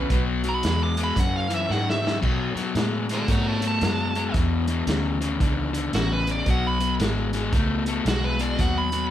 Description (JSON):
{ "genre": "electric blues shuffle", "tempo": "113 BPM", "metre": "4/4", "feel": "swing 63% on 8ths", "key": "unclear", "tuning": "A4 = 443 Hz", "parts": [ { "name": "crunchy overdriven guitar", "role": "riff", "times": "0.0-9.1 s", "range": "E2 to A3", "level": "-26 LUFS", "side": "left 5 dB", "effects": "none" }, { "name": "vintage muted fingered electric bass", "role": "bass", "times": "0.0-9.1 s", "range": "G#1 to B2", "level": "-27 LUFS", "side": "right 1 dB", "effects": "none" }, { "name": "vintage drum kit", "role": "drums", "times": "0.1-9.0 s", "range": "crash cymbal, hi-hat, kick drum, snare drum", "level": "-27 LUFS", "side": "right 1 dB", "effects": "none" }, { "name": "dark smooth lead guitar", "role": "melody", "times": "0.5-9.1 s", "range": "F#4 to D6", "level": "-27 LUFS", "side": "right 3 dB", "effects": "overdrive" } ], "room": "light reverb", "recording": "band playing live in one room", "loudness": "-21 LUFS", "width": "side -11 dB against mid", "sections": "0.0-2.2 A section; 2.2-9.1 B section", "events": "drum fill 1.7-2.2; lead electric guitar solo 2.2-9.1", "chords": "0.1 B5; 1.2 F#sus2; 2.2 B5; 4.3 E5; 6.5 B13" }